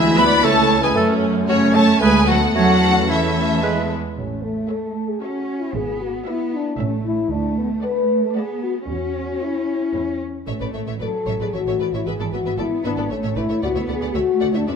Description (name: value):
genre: quick classical-period movement for symphony orchestra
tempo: 114 BPM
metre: 3/4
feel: straight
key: A major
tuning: A4 = 440 Hz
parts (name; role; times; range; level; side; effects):
- warm studio violin section; melody; 0.0-14.7 s; C#5 to B5; -23 LUFS; left 3 dB; none
- warm clarinet; second line; 0.0-3.9 s; C#4 to B4; -24 LUFS; left 1 dB; none
- warm studio violin section; second line; 0.0-14.7 s; F#4 to E5; -27 LUFS; left 1 dB; none
- warm studio viola section; accompaniment; 0.0-14.7 s; G#3 to C#4; -26 LUFS; right 1 dB; none
- dark French horn section; sustained chords; 0.0-14.8 s; G#3 to B4; -23 LUFS; left 5 dB; none
- clear studio double bass section; bass; 0.0-14.7 s; G#1 to F#2; -26 LUFS; right 5 dB; none
- rich studio cello section; bass; 0.0-14.8 s; C#3 to C#4; -24 LUFS; right 4 dB; none
- silver concert flute; second line; 0.2-3.9 s; C#5 to B5; -25 LUFS; equal; none
- clear oboe; second line; 0.4-3.8 s; A4 to C#5; -27 LUFS; right 4 dB; none
- dark bassoon; accompaniment; 0.4-3.8 s; G#3 to A3; -27 LUFS; right 3 dB; none
room: moderate scoring stage reverb, RT60 1.5 s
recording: none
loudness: -17 LUFS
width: side -6 dB against mid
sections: 0.0-4.2 A section; 4.2-14.8 B section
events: none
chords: 0.4 A/C#; 1.0 F#m; 2.0 Bm7/D; 2.6 A/E; 3.6 E; 4.2 A; 5.7 E/G#; 6.8 A; 7.3 D; 8.9 A/E; 9.9 E; 10.5 A; 12.1 E/G#; 13.1 A; 13.6 D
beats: 0.44 | 0.96 1.48 2.02 | 2.56 3.10 3.63 | 4.17 4.70 5.22 | 5.75 6.27 6.79 | 7.30 7.83 8.35 | 8.88 9.41 9.94 | 10.48 11.01 11.54 | 12.07 12.59 13.11 | 13.63 14.14 14.67